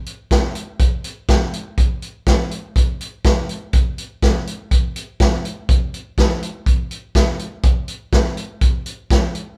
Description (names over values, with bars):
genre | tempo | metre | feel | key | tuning
rock | 123 BPM | 4/4 | straight | none | none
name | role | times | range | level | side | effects
vintage drum kit | drums | 0.1-9.5 s | hi-hat, kick drum, snare drum | -18 LUFS | equal | none
room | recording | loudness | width
light reverb | band playing live in one room | -19 LUFS | mono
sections
0.0-9.6 A section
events
none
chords
none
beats
0.31 0.80 1.29 | 1.78 2.27 2.75 3.25 | 3.73 4.22 4.71 5.20 | 5.69 6.18 6.67 7.15 | 7.64 8.13 8.62 9.11